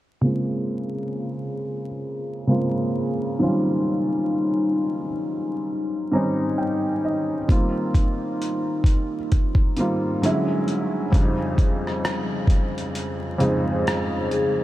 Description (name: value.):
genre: lo-fi hip hop.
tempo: 66 BPM.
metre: 4/4.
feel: swing 55% on 16ths.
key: Bb dorian.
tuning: A4 = 439 Hz.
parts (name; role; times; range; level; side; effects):
felt-muted upright piano; accompaniment; 0.2-14.6 s; F2 to Bb5; -22 LUFS; equal; cassette tape, low-pass filter.
dusty soul sampler-style drum kit; drums; 7.5-14.5 s; hi-hat, kick drum, rim click; -21 LUFS; equal; overdrive.
vibraphone with medium mallets; melody; 14.3-14.6 s; Ab4; -22 LUFS; left 3 dB; none.
room: wet huge ambient reverb, RT60 9.0 s.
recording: dreamy mix soaked in reverb, vinyl crackle.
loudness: -21 LUFS.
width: side -15 dB against mid.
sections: 0.2-14.6 A section.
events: filter sweep on felt piano 0.2-14.6; felt piano fill 5.7-7.5; kick muted 12.9-14.6.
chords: 0.2 Bbm9; 3.4 Eb13; 7.5 F9sus4; 10.2 Dmaj9#11; 11.1 Dbmaj9#11/F.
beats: | 0.22 1.13 2.04 2.95 | 3.86 4.77 5.68 6.59 | 7.50 8.40 9.31 10.22 | 11.13 12.04 12.95 13.86.